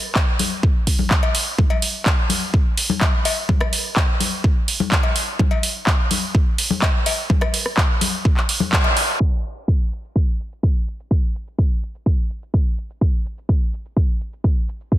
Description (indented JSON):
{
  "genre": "house",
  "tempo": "126 BPM",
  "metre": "4/4",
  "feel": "straight",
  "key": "none",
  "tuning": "none",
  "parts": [
    { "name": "electronic kick drum", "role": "drums", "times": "0.2-15.0 s", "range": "none", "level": "-18 LUFS", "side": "equal", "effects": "none" },
    { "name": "pop drum kit", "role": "drums", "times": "0.2-15.0 s", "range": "crash cymbal, handclaps, hi-hat, rim click, shaker", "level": "-21 LUFS", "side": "right 1 dB", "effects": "sidechain pumping on hats, sidechain pumping on cymbals, sidechain pumping on perc" },
    { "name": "congas and cowbell", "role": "percussion", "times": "0.4-8.9 s", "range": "none", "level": "-25 LUFS", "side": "left 7 dB", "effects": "sidechain pumping on perc" }
  ],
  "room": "light reverb",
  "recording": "dense, heavily limited modern master, low-pass filter",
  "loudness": "-17 LUFS",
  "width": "side -14 dB against mid",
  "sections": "0.0-9.2 A section; 9.2-15.0 B section",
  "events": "band accent 8.7; filter sweep 9.2-15.0",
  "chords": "none",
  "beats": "0.16 0.63 1.11 | 1.58 2.06 2.54 3.01 | 3.49 3.97 4.44 4.92 | 5.39 5.87 6.35 6.82 | 7.30 7.78 8.25 8.73 | 9.20 9.68 10.16 10.63 | 11.11 11.59 12.06 12.54 | 13.01 13.49 13.97 14.44 | 14.92"
}